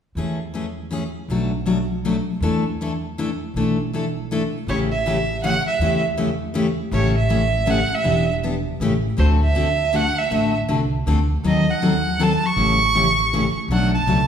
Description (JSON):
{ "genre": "acoustic string swing (jazz manouche)", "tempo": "160 BPM", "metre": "3/4", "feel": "swing 62% on 8ths", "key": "A mixolydian from 4.7 s", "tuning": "A4 = 440 Hz", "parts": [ { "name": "picked steel-string acoustic guitar", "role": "accompaniment", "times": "0.2-14.2 s", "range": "B2 to A4", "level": "-21 LUFS", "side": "left 2 dB", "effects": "none" }, { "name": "upright bass", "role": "bass", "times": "0.2-14.3 s", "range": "E1 to E2", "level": "-24 LUFS", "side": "equal", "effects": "none" }, { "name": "rich violin", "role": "melody", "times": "4.7-14.3 s", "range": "C5 to C#6", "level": "-21 LUFS", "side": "right 4 dB", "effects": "none" } ], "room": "wet recital hall reverb, RT60 1.4 s", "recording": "recorded in a church or concert hall", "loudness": "-18 LUFS", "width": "side -8 dB against mid", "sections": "0.2-4.7 A section; 4.7-14.3 B section", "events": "none", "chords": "0.2 Amaj7/E; 1.3 Bm7; 2.4 E7sus4; 4.7 A7; 8.1 Em7; 8.8 A7; 9.2 D7; 11.4 D#dim7; 12.6 A7; 13.7 Bm7" }